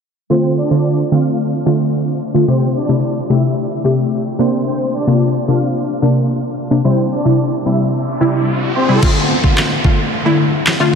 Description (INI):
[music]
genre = dance-pop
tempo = 110 BPM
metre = 4/4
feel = straight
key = D minor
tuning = A4 = 441 Hz
[part]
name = filtered supersaw swell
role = melody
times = 0.3-8.9 s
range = C4 to F5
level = -22 LUFS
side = equal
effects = sidechain pumping, diffuse ambient delay
[part]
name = punchy chord stab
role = accompaniment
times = 0.3-11.0 s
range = C3 to G4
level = -14 LUFS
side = left 1 dB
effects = chorus, sidechain pumping
[part]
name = riser and downlifter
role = sound effects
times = 8.0-11.0 s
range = none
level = -20 LUFS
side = right 1 dB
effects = none
[part]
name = smooth R&B drum kit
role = drums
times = 9.0-10.8 s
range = crash cymbal, handclaps, kick drum, snare drum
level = -15 LUFS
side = right 1 dB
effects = none
[sound]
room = wet huge ambient reverb, RT60 8.4 s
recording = dreamy mix soaked in reverb, low-pass filter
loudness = -13 LUFS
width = side -6 dB against mid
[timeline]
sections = 0.3-9.0 A section; 9.0-11.0 B section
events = filter sweep 0.3-9.0; riser 8.0-9.0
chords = 0.3 Dm; 2.5 Am7; 4.4 Bbadd9; 6.8 C; 9.0 Dm